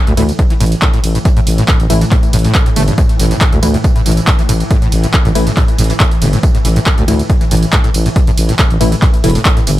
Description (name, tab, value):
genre	driving peak-time techno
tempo	139 BPM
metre	4/4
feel	straight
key	unclear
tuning	A4 = 440 Hz
part	swarming drone	drone	0.2-9.8 s	A2 to E3	-21 LUFS	right 1 dB	built-in reverb, sidechain pumping
part	acid bass, saw	riff	0.1-9.7 s	G2 to A3	-18 LUFS	equal	ensemble chorus, sidechain pumping, ping-pong delay
part	growling FM bass	bass	0.1-9.8 s	E1 to D2	-13 LUFS	equal	sidechain pumping
part	punchy analog drum machine	drums	0.1-9.8 s	handclaps, hi-hat, ride cymbal, tambourine	-19 LUFS	right 1 dB	sidechain pumping on hats, sidechain pumping on cymbals, sidechain pumping on perc
part	wavetable chord stab	stabs	0.2-9.3 s	E3 to E4	-19 LUFS	left 2 dB	sidechain pumping, ping-pong delay
part	electronic kick drum	drums	0.4-9.5 s	none	-12 LUFS	equal	none
room	little or no reverb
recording	none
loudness	-9 LUFS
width	side -15 dB against mid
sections	0.0-9.8 A section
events	none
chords	0.0 A5